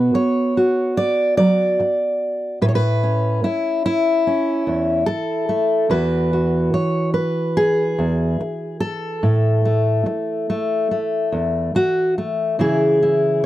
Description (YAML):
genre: folk, solo fingerstyle acoustic guitar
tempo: 72 BPM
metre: 4/4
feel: straight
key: A major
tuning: A4 = 440 Hz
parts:
  - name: fingerpicked steel-string acoustic guitar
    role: solo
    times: 0.0-13.5 s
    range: E2 to D5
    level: -17 LUFS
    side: equal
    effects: none
room: little or no reverb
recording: dry, close 1970s-style studio recording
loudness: -17 LUFS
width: side -14 dB against mid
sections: 0.0-12.6 A section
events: none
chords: 0.0 Bm; 2.6 A; 5.9 Eadd9; 9.2 A5; 12.6 C#m